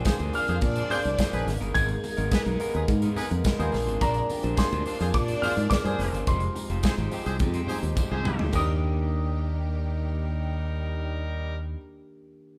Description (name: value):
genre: disco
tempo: 106 BPM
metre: 4/4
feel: straight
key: Eb major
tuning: A4 = 440 Hz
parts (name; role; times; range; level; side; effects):
- dark concert grand piano; melody; 0.0-11.8 s; Bb5 to Ab6; -34 LUFS; equal; none
- barky tine electric piano; accompaniment; 0.0-12.6 s; Eb3 to Bb4; -37 LUFS; equal; none
- electric guitar at the edge of break-up; accompaniment; 0.0-12.1 s; Ab3 to C5; -44 LUFS; equal; none
- clear studio string section; sustained chords; 0.0-11.6 s; Eb3 to G5; -44 LUFS; equal; none
- modern studio drum kit; drums; 0.0-8.7 s; hi-hat, kick drum, snare drum, toms; -31 LUFS; equal; none
- clear horn section; stabs; 0.1-11.6 s; G3 to C5; -38 LUFS; equal; none
- congas; percussion; 0.1-8.8 s; none; -41 LUFS; equal; none
- tambourine; percussion; 0.1-8.8 s; none; -49 LUFS; equal; none
- modern bright fingered electric bass; bass; 0.2-11.7 s; F1 to Bb2; -31 LUFS; equal; none
- clear studio string section; second line; 0.3-11.6 s; D4 to G5; -38 LUFS; equal; none
room: moderate large studio reverb, RT60 1.2 s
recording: band playing live in one room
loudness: -27 LUFS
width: mono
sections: 0.0-8.5 A section; 8.5-10.8 B section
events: drum fill 8.0-8.5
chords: 0.0 Bb9; 1.5 Abmadd9; 3.7 Bb9; 6.3 Fm9; 8.5 Ebmaj7